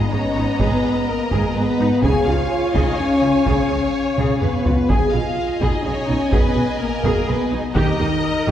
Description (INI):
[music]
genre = cinematic, epic orchestral film score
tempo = 126 BPM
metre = 3/4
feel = straight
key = G# dorian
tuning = A4 = 440 Hz
[part]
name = rich symphonic violin section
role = melody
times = 0.0-8.5 s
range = A#4 to G#5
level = -29 LUFS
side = left 2 dB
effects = none
[part]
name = warm symphonic violin section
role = second line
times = 0.0-8.5 s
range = D#5 to A#5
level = -27 LUFS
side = equal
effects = none
[part]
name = warm symphonic viola section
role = accompaniment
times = 0.0-8.5 s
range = B3 to C#5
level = -26 LUFS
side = equal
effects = none
[part]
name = mellow French horn section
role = sustained chords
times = 0.0-8.5 s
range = A#3 to G#4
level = -21 LUFS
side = left 1 dB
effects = none
[part]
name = warm studio double bass section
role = bass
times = 0.1-8.5 s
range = G#1 to D#2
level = -26 LUFS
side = right 2 dB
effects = none
[part]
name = warm symphonic cello section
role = bass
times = 0.1-8.5 s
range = G#2 to D#3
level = -26 LUFS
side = right 1 dB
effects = none
[part]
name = taiko ensemble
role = drums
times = 0.6-8.5 s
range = none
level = -24 LUFS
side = equal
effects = none
[part]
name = timpani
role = percussion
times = 7.8-8.4 s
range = D#3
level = -26 LUFS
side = right 3 dB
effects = none
[sound]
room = wet scoring stage reverb, RT60 1.8 s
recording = heard from further back in the room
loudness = -16 LUFS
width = side -10 dB against mid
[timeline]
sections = 0.0-8.5 A section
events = drum fill 4.2-4.9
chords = 0.0 G#madd9; 2.0 C#; 4.9 G#madd9/B; 7.8 D#